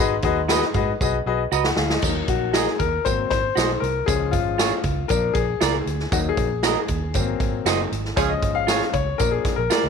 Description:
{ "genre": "uptempo 1960s-style soul", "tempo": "117 BPM", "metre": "4/4", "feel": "straight", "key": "Eb minor", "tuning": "A4 = 440 Hz", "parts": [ { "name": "clear grand piano", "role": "accompaniment", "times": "0.0-9.9 s", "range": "Ab2 to Bb5", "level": "-23 LUFS", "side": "left 9 dB", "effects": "none" }, { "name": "vintage muted fingered electric bass", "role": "bass", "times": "0.0-9.9 s", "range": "Gb1 to Ab2", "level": "-27 LUFS", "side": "right 2 dB", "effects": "none" }, { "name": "swinging big-band drum kit", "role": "drums", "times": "0.2-9.8 s", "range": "crash cymbal, hi-hat, kick drum, snare drum", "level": "-24 LUFS", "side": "right 1 dB", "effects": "none" }, { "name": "electric guitar through a small old amp", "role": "stabs", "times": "0.5-9.8 s", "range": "F4 to Eb5", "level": "-25 LUFS", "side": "right 14 dB", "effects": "none" }, { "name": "tambourine", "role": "percussion", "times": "0.5-9.8 s", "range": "none", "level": "-31 LUFS", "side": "right 23 dB", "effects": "none" }, { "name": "mellow horn section", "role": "second line", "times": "8.2-8.3 s", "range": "F3 to Ab4", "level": "-25 LUFS", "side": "right 14 dB", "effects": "none" } ], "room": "moderate spring reverb, RT60 1.3 s", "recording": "1960s-style stereo with parts hard left and right", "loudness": "-19 LUFS", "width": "side -6 dB against mid", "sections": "0.0-2.0 A section; 2.0-9.9 B section", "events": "drum fill 1.0-2.0; grand piano solo 2.0-9.9; band accent 8.2-9.9", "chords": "0.0 Abm7; 2.0 Ebm; 3.1 Ab7; 4.1 Db; 5.1 Bb; 6.1 Ebm; 7.1 Ab7; 8.2 Db; 9.2 Bb" }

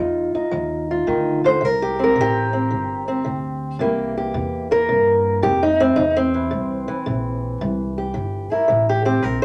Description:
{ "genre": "acoustic country blues, solo or duo", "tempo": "110 BPM", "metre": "4/4", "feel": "swing 68% on 8ths", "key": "C mixolydian", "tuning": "A4 = 440 Hz", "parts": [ { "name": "fingerpicked old ladder-braced acoustic guitar", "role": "melody", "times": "0.0-9.4 s", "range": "C3 to C5", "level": "-21 LUFS", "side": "equal", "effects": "none" }, { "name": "upright bass", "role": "bass", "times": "0.0-9.4 s", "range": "G1 to G2", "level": "-29 LUFS", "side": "equal", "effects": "none" } ], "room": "light reverb", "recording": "none", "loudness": "-20 LUFS", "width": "mono", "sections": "0.0-3.8 A section; 3.8-9.4 B section", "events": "steel-string acoustic guitar solo 3.8-9.4", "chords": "0.0 Cmadd11 (rootless); 1.6 C5; 3.8 C7" }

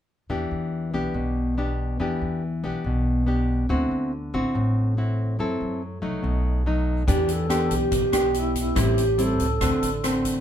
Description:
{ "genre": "bossa nova", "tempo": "142 BPM", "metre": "4/4", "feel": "straight", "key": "E minor", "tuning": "A4 = 439 Hz", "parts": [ { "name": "nylon-string guitar", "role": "accompaniment", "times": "0.3-10.4 s", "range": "A2 to A4", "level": "-24 LUFS", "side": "left 1 dB", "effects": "none" }, { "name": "upright bass", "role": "bass", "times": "0.3-10.4 s", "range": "A1 to F#2", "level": "-28 LUFS", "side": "equal", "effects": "none" }, { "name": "reedy wooden-headed alto flute", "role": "melody", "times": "7.1-10.3 s", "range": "E4 to A4", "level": "-25 LUFS", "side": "right 2 dB", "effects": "none" }, { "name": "swinging big-band drum kit", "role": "drums", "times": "7.1-10.3 s", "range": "hi-hat, kick drum, rim click", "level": "-28 LUFS", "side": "equal", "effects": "none" } ], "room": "wet small room reverb, RT60 0.5 s", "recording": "band playing live in one room", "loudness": "-22 LUFS", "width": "side -10 dB against mid", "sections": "0.3-7.1 A section; 7.1-10.4 B section", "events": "none", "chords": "0.3 Em7; 3.7 D9; 5.4 F#m7b5; 6.2 B7; 7.1 Em7; 8.8 Am7; 9.6 D7" }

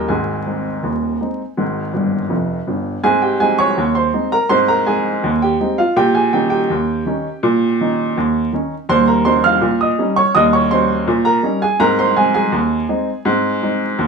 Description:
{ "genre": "ragtime piano", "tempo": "82 BPM", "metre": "2/4", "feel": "straight", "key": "Ab major", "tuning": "A4 = 440 Hz", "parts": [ { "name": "warm upright piano", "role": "solo", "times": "0.0-14.1 s", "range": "Eb1 to F6", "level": "-14 LUFS", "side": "right 1 dB", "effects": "none" } ], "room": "moderate club reverb, RT60 0.5 s", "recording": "vinyl crackle", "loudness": "-14 LUFS", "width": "side -5 dB against mid", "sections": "0.0-3.0 A section; 3.0-14.1 B section", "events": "upright piano fill 1.9-3.0", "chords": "0.1 Ab" }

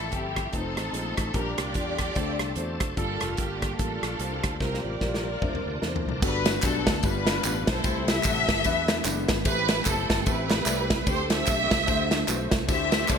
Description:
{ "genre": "uptempo gospel", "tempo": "148 BPM", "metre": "4/4", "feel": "swing 59% on 8ths", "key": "G major from 6.2 s", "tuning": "A4 = 440 Hz", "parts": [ { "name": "warm studio string section", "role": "melody", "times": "0.0-13.2 s", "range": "Bb3 to E5", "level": "-28 LUFS", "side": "left 1 dB", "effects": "none" }, { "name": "dark concert grand piano", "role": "accompaniment", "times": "0.0-13.2 s", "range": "G2 to F#5", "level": "-33 LUFS", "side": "left 2 dB", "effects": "analog chorus" }, { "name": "bright tonewheel organ", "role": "sustained chords", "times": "0.0-6.2, 12.7-13.2 s", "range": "D3 to Bb4", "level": "-38 LUFS", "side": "right 2 dB", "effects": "slow rotary speaker, overdrive, chorus vibrato" }, { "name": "mellow French horn section", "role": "sustained chords", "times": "0.0-6.2 s", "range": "D3 to A4", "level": "-43 LUFS", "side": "left 2 dB", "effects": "none" }, { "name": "fingered electric bass", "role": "bass", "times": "0.0-13.2 s", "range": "F1 to E2", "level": "-33 LUFS", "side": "equal", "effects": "none" }, { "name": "natural country drum kit", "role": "drums", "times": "0.1-13.2 s", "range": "crash cymbal, hi-hat, kick drum, ride cymbal, rim click, snare drum, toms", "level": "-27 LUFS", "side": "equal", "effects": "gated reverb" }, { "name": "tambourine and handclaps", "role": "percussion", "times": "6.2-13.2 s", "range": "none", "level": "-35 LUFS", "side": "right 5 dB", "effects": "none" } ], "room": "light reverb, studio reverb", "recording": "bright 1980s-style digital production", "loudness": "-23 LUFS", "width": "side -7 dB against mid", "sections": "0.0-6.2 A section; 6.2-13.2 B section", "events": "grand piano fill 2.4-3.0; drum fill 4.6-6.2", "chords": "0.0 Fmaj9; 0.5 F7; 1.3 Bb6; 2.2 D7; 3.0 Gm9; 4.6 C7sus4; 5.4 C9; 6.2 Gmaj9; 7.0 G7; 7.8 C6; 8.7 E7; 9.5 Am9; 11.1 D7sus4; 11.9 D9" }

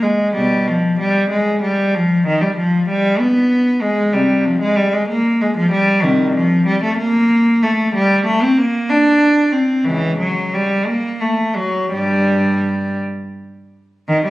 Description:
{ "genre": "classical, baroque-style suite movement for unaccompanied cello", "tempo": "54-65 BPM (dotted quarters)", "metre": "6/8", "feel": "rubato", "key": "G minor from 6.0 s", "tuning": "A4 = 441 Hz", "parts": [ { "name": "warm cello", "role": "solo", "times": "0.0-14.3 s", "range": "C2 to D4", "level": "-14 LUFS", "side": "equal", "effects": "none" } ], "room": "moderate stone room reverb, RT60 1.4 s", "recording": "recorded on a phone in the room, club reverb, compression", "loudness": "-14 LUFS", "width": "side -17 dB against mid", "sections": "0.0-14.1 A section", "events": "none", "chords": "none" }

